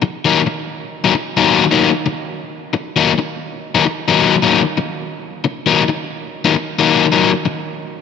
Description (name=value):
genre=blues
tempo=89 BPM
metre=4/4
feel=swing 68% on 8ths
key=Eb minor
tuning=A4 = 442 Hz
part: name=crunchy overdriven guitar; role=solo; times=0.0-7.5 s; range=Eb3 to Eb4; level=-14 LUFS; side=left 6 dB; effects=none
room=wet plate reverb, RT60 3.5 s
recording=nothing above 7.8 kHz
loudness=-13 LUFS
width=side -6 dB against mid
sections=0.0-8.0 A section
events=none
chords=0.0 Ebm